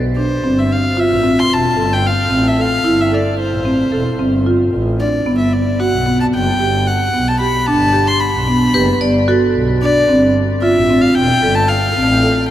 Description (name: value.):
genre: contemporary instrumental, chamber music in an uneven meter.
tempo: 224 BPM (eighths).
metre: 9/8.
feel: straight.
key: unclear.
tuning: A4 = 441 Hz.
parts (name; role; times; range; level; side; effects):
marimba with medium mallets; arpeggios; 0.0-12.5 s; B3 to A4; -15 LUFS; right 1 dB; none.
muted double bass; bass; 0.0-12.4 s; E1 to B1; -19 LUFS; equal; none.
warm violin; melody; 0.2-12.5 s; C5 to C6; -17 LUFS; left 2 dB; none.
vibraphone with hard mallets; second line; 8.7-9.7 s; A4 to D5; -26 LUFS; left 2 dB; none.
room: wet huge ambient reverb, RT60 7.8 s.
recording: in a vast, echoing space.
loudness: -12 LUFS.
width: side -12 dB against mid.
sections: 0.0-12.5 A section.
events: none.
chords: 0.4 Fmaj7; 5.3 Gmaj7; 10.1 F.